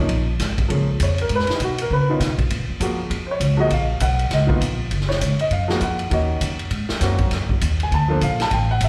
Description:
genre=jazz piano trio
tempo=200 BPM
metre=4/4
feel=swing 60% on 8ths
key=F# major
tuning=A4 = 444 Hz
part: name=clear grand piano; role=melody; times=0.0-8.9 s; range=D#3 to A5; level=-25 LUFS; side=equal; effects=slapback echo
part: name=upright bass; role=bass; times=0.0-8.9 s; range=F#1 to C#3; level=-24 LUFS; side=equal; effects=none
part: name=swinging big-band drum kit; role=drums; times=0.1-8.9 s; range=hi-hat, kick drum, ride cymbal, snare drum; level=-28 LUFS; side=equal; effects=none
room=light reverb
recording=live gig heard through the venue's PA, recital hall reverb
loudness=-21 LUFS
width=mono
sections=0.0-4.9 A section; 4.9-8.9 A section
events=grand piano solo 0.0-8.9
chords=0.1 A#m7; 1.3 G#m; 1.9 C#7sus2; 2.5 F#maj7; 4.3 C#sus2; 4.9 F#maj7(no3); 6.1 D#m7; 6.7 G#9; 7.3 A#maj7

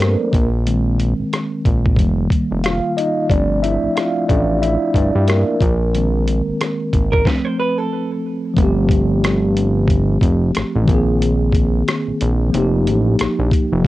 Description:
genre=R&B, neo-soul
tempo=91 BPM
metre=4/4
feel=swing 57% on 16ths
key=unclear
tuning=A4 = 440 Hz
part: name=mellow tine electric piano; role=accompaniment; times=0.0-13.9 s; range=Eb3 to F5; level=-19 LUFS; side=left 1 dB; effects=medium stereo tremolo
part: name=fat analog bass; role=bass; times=0.0-13.8 s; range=F1 to G2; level=-17 LUFS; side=equal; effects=transformer saturation
part: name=boom bap sampler-style drum kit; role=drums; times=0.0-13.9 s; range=hi-hat, kick drum, rim click, snare drum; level=-18 LUFS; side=equal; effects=cassette tape
part: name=vintage hollow-body jazz guitar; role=second line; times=7.1-8.5 s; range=A4 to C5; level=-21 LUFS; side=right 3 dB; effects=analog delay
room=light reverb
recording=home recording on cassette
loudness=-15 LUFS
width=side -16 dB against mid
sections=0.0-8.6 A section; 8.6-13.9 B section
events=tine electric piano solo 0.0-8.6; stop 7.3-8.6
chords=0.3 Bb9sus4; 2.0 F9sus4; 3.3 G9sus4; 5.6 Bb9sus4; 7.3 F; 8.6 G9sus4; 10.9 Bb9sus4; 12.5 F9sus4

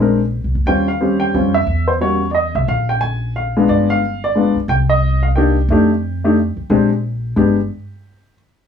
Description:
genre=jazz piano trio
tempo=179 BPM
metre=3/4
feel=swing 62% on 8ths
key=Bb mixolydian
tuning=A4 = 442 Hz
part: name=warm baby grand piano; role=melody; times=0.0-8.3 s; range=G3 to Ab5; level=-15 LUFS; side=left 2 dB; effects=none
part: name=upright bass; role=bass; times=0.0-7.7 s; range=G1 to F2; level=-19 LUFS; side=equal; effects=none
room=light reverb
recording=none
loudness=-14 LUFS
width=side -7 dB against mid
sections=0.0-8.7 A section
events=stop 7.7-8.7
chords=0.0 Bb9; 0.7 Eb13; 1.7 E5; 2.7 Bb7(no3); 3.7 G7b9; 4.7 Cm; 5.7 F13; 6.7 Bb13; 7.4 G; 7.7 N.C.

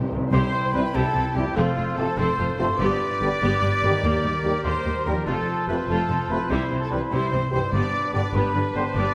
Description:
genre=cinematic, heroic adventure film score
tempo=97 BPM (dotted quarters)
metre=12/8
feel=straight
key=C major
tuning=A4 = 438 Hz
part: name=clear symphonic violin section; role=second line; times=0.0-9.1 s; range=F4 to D5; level=-37 LUFS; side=equal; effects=none
part: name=rich symphonic viola section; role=accompaniment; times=0.0-9.1 s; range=C3 to A4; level=-32 LUFS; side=equal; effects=none
part: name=concert harp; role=arpeggios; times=0.0-9.1 s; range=F2 to C6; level=-36 LUFS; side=equal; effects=none
part: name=timpani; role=percussion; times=0.0-3.4, 7.7-8.3 s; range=G2 to C3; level=-32 LUFS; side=equal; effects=none
part: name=rich chamber double bass section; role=bass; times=0.1-9.0 s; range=F1 to Eb2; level=-31 LUFS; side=equal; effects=none
part: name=clear symphonic violin section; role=melody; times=0.3-9.1 s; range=F4 to D5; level=-39 LUFS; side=equal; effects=none
part: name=clear clarinet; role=second line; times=0.3-9.1 s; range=D4 to A4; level=-36 LUFS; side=equal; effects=none
part: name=clear oboe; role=second line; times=0.3-9.1 s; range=Bb4 to G5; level=-37 LUFS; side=equal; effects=none
part: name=silver concert flute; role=second line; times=0.3-9.1 s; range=F5 to D6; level=-32 LUFS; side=equal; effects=none
part: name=mellow trumpet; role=stabs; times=0.3-9.1 s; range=F4 to D5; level=-32 LUFS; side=equal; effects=none
part: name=rich symphonic cello section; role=bass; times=0.3-9.0 s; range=Eb2 to C3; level=-32 LUFS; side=equal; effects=none
part: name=dark trombone section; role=sustained chords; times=0.7-8.8 s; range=C3 to A3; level=-36 LUFS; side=equal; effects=none
part: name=mellow French horn section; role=sustained chords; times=0.8-8.8 s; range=Bb3 to G4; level=-36 LUFS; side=equal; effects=none
room=wet concert hall reverb, RT60 1.8 s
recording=none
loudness=-23 LUFS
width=mono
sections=0.3-9.1 A section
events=timpani fill 0.0-0.3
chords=0.3 C; 1.6 F; 2.8 G; 4.0 Eb; 5.3 F; 6.5 C; 7.7 G

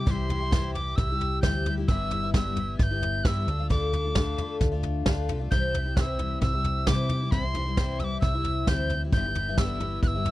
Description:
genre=indie folk with a building arrangement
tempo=132 BPM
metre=4/4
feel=straight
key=C major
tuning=A4 = 438 Hz
part: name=tin whistle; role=melody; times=0.0-10.3 s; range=C6 to A6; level=-31 LUFS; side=right 1 dB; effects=none
part: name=picked twelve-string acoustic guitar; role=accompaniment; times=0.0-10.3 s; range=G2 to G4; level=-32 LUFS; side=left 4 dB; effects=none
part: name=hollow-body short-scale fingered electric bass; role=bass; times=0.0-10.3 s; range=G1 to C3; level=-30 LUFS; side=equal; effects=none
part: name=soft brush drum kit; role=drums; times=0.1-10.3 s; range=kick drum, snare drum, toms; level=-26 LUFS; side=equal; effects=none
room=little or no reverb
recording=dry, close 1970s-style studio recording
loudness=-24 LUFS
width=side -16 dB against mid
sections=0.0-10.3 A section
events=none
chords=0.0 C; 1.9 G6; 3.5 Dm; 5.5 C; 9.1 G6

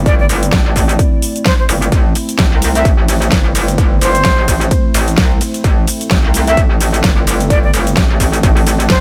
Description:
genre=bass house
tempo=129 BPM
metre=4/4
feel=swing 58% on 16ths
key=A minor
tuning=A4 = 441 Hz
part: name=dark analog pad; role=sustained chords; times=0.0-9.0 s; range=A3 to D5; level=-24 LUFS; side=equal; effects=chorus, sidechain pumping
part: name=metallic wobble bass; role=bass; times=0.0-9.0 s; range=G1 to C2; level=-17 LUFS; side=equal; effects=chorus, overdrive, sidechain pumping
part: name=breathy bright jazz flute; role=melody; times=0.1-9.0 s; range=C5 to E5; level=-20 LUFS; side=equal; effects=delay
part: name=big-room dance drum kit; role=drums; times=0.1-9.0 s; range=hi-hat, ride cymbal, shaker, snare drum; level=-20 LUFS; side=equal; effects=none
part: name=electronic kick drum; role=drums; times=0.1-9.0 s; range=none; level=-15 LUFS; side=equal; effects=none
room=little or no reverb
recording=none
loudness=-13 LUFS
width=mono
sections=0.0-9.0 A section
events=none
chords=0.0 Am

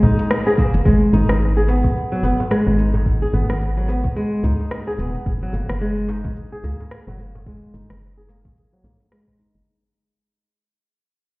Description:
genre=organic downtempo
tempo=109 BPM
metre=4/4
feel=swing 58% on 16ths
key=G# minor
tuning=A4 = 442 Hz
part: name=warbly tape-like pad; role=sustained chords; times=0.0-0.8 s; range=C#3 to F#4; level=-36 LUFS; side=left 2 dB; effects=none
part: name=flamenco guitar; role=arpeggios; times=0.0-9.7 s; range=F#3 to G#4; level=-21 LUFS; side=equal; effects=low-pass filter, tape echo
part: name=woody FM bass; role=bass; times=0.0-9.6 s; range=D#1 to C#2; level=-20 LUFS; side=equal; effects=tube saturation
part: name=deep house drum kit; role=drums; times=0.0-9.6 s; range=hi-hat, rim click, shaker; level=-25 LUFS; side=equal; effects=overdrive
part: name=electronic kick drum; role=drums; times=0.0-9.4 s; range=none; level=-20 LUFS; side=equal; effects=none
part: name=djembe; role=percussion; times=0.0-9.2 s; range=none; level=-26 LUFS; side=equal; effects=none
room=light reverb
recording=heard muffled through a wall, stone room reverb, EQ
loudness=-17 LUFS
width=side -23 dB against mid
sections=0.9-9.7 A section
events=band accent 0.3; fade-out 0.9-9.7; filter sweep on nylon-string guitar 0.9-9.7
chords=0.0 F#add9; 0.9 G#m; 5.3 F#add9

